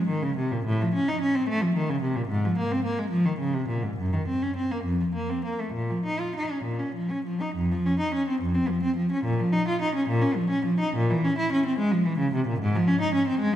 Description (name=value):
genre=classical, baroque-style suite movement for unaccompanied cello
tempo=63-75 BPM (dotted quarters)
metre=6/8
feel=rubato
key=Bb minor, F minor from 7.5 s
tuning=A4 = 440 Hz
part: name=rich cello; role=solo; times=0.0-13.6 s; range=F2 to F4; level=-23 LUFS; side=equal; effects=none
room=wet concert hall reverb, RT60 1.9 s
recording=minimal, uncompressed stereo recording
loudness=-23 LUFS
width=side -11 dB against mid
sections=0.0-7.5 A section; 7.5-13.6 A section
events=none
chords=none